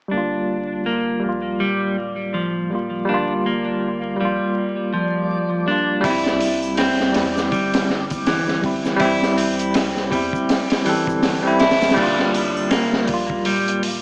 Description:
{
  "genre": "trip hop",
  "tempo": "81 BPM",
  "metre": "4/4",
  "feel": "swing 58% on 16ths",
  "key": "G dorian",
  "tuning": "A4 = 440 Hz",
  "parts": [
    { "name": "bell-like tine electric piano", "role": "accompaniment", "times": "0.1-14.0 s", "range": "G3 to A4", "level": "-24 LUFS", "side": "equal", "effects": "tremolo, low-pass filter, tape echo" },
    { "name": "clean electric guitar", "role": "arpeggios", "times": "0.1-13.8 s", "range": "E3 to E4", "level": "-25 LUFS", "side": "equal", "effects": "low-pass filter, tape echo" },
    { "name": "round analog bass", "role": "bass", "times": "0.1-14.0 s", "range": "D1 to E2", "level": "-39 LUFS", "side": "equal", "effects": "tube saturation" },
    { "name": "backwards swelling texture", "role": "texture", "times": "1.8-12.0 s", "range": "D5", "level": "-36 LUFS", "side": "equal", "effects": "built-in reverb" },
    { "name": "crunchy breakbeat drum kit", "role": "drums", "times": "6.0-14.0 s", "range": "crash cymbal, hi-hat, kick drum, snare drum", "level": "-24 LUFS", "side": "equal", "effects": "none" },
    { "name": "tube shaker and triangle", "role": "percussion", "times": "6.0-12.9 s", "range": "none", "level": "-43 LUFS", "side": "equal", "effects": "none" }
  ],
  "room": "moderate spring reverb, RT60 2.7 s",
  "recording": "echo-heavy mix, vinyl crackle, small speaker sound",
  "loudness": "-20 LUFS",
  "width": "mono",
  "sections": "0.1-12.0 A section; 12.0-14.0 B section",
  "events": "filter sweep on tine electric piano 0.1-12.0",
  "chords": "0.1 Gm7; 6.1 C; 12.0 Gm7"
}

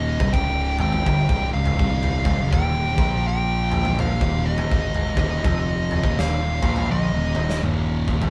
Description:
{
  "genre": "stoner and doom metal",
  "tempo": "82 BPM",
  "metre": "4/4",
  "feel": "swing 62% on 8ths",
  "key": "unclear",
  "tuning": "A4 = 440 Hz",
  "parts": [
    { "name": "fuzz lead guitar", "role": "melody", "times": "0.0-7.6 s", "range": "Eb5 to G5", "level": "-29 LUFS", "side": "equal", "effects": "distortion" },
    { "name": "thick fuzz guitar", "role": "riff", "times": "0.0-8.3 s", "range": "C2 to Bb3", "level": "-30 LUFS", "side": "equal", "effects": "distortion" },
    { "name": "thick fuzz guitar", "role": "riff", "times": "0.0-8.3 s", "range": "C2 to Bb3", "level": "-28 LUFS", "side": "equal", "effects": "distortion" },
    { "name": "growling picked electric bass", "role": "bass", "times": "0.0-8.3 s", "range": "C1 to Bb1", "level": "-29 LUFS", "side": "equal", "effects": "overdrive" },
    { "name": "big rock drum kit", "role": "drums", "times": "0.2-8.3 s", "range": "kick drum, snare drum, toms", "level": "-26 LUFS", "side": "equal", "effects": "none" }
  ],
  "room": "moderate stone room reverb, RT60 1.1 s",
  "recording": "band playing live in one room",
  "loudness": "-22 LUFS",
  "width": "mono",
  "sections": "0.0-8.3 A section",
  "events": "drum fill 6.9-8.3",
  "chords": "0.0 Cm; 2.5 Eb5; 2.9 Bb5; 4.2 Eb5"
}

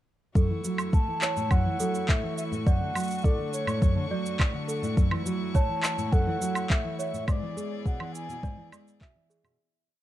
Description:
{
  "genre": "folktronica",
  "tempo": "104 BPM",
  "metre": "4/4",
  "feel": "straight",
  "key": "A major",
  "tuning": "A4 = 440 Hz",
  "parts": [
    { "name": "celesta", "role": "second line", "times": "0.4-9.6 s", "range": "G#4 to E5", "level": "-36 LUFS", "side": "right 4 dB", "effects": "tape echo" },
    { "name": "clear string quartet", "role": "sustained chords", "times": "0.4-9.6 s", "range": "A3 to C#6", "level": "-39 LUFS", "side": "left 2 dB", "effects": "none" },
    { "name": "nylon-string guitar", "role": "arpeggios", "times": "0.4-9.6 s", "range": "F#2 to G#3", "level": "-31 LUFS", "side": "equal", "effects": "low-pass filter" },
    { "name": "electronic kick drum", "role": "drums", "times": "0.4-9.1 s", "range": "none", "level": "-23 LUFS", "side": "equal", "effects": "none" },
    { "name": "electronic shaker, woodblock and handclaps", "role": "drums", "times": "0.4-9.6 s", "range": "none", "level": "-32 LUFS", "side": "right 1 dB", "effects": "none" },
    { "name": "mellow baroque flute", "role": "melody", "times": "0.9-8.7 s", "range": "C#5 to A5", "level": "-34 LUFS", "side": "left 1 dB", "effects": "vintage 12-bit sampler grit, ping-pong delay" }
  ],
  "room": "small room ambience",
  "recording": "dark, warm production",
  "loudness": "-25 LUFS",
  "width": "side -13 dB against mid",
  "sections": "0.4-9.6 groove",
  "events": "filter sweep on nylon-string guitar 0.4-9.6; fade-out 6.5-9.6",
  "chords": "0.4 A6; 2.7 Dmaj7; 5.0 A6; 7.3 E7"
}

